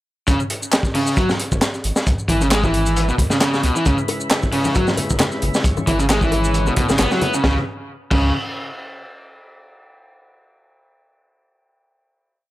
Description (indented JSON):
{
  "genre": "breakbeat, breaks",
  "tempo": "134 BPM",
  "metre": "4/4",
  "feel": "swing 54% on 16ths",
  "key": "C# minor",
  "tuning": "A4 = 440 Hz",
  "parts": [
    { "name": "raw garage guitar", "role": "riff", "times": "0.3-8.3 s", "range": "B2 to B3", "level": "-20 LUFS", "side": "equal", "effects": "overdrive, tube saturation, analog delay" },
    { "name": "saturated sub bass", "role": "bass", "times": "0.3-8.3 s", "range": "G#1 to C#2", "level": "-21 LUFS", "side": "equal", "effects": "none" },
    { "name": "crunchy breakbeat drum kit", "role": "drums", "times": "0.3-8.2 s", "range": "crash cymbal, hi-hat, kick drum, snare drum", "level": "-20 LUFS", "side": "equal", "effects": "none" },
    { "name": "garage drum kit", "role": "drums", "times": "0.3-7.4 s", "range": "handclaps, hi-hat, shaker", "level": "-26 LUFS", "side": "equal", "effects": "overdrive" },
    { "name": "tonewheel organ", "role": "sustained chords", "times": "3.9-7.6 s", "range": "C#3 to C#5", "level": "-28 LUFS", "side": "equal", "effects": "slow rotary speaker, sidechain pumping" },
    { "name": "bongos and congas", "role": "percussion", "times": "3.9-7.3 s", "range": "none", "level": "-27 LUFS", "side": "left 2 dB", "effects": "none" }
  ],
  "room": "little or no reverb",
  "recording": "dry, gritty hardware recording",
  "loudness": "-16 LUFS",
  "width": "side -16 dB against mid",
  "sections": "0.3-7.4 drop; 7.4-9.2 final chord",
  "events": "drop 0.3-7.4",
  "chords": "0.3 C#m7"
}